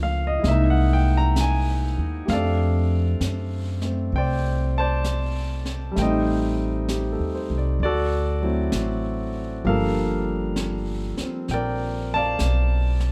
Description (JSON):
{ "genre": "jazz ballad", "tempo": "65 BPM", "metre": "4/4", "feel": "swing 68% on 8ths", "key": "F major", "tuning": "A4 = 438 Hz", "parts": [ { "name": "warm concert grand piano", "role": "accompaniment", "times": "0.0-13.1 s", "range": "F3 to Bb5", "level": "-27 LUFS", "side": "equal", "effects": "none" }, { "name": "upright bass", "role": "bass", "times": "0.0-13.1 s", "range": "G1 to Gb2", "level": "-26 LUFS", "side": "equal", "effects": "none" }, { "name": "jazz brush drum kit", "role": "drums", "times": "0.4-13.1 s", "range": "brushed snare drum, hi-hat, snare drum", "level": "-36 LUFS", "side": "equal", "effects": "none" } ], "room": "moderate studio reverb, RT60 0.6 s", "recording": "dark, warm production", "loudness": "-23 LUFS", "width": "mono", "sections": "0.0-2.3 A section; 2.3-13.1 B section", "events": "none", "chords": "0.4 C7alt; 2.3 F69; 6.0 Am7b5; 7.8 D7; 9.6 Gm9" }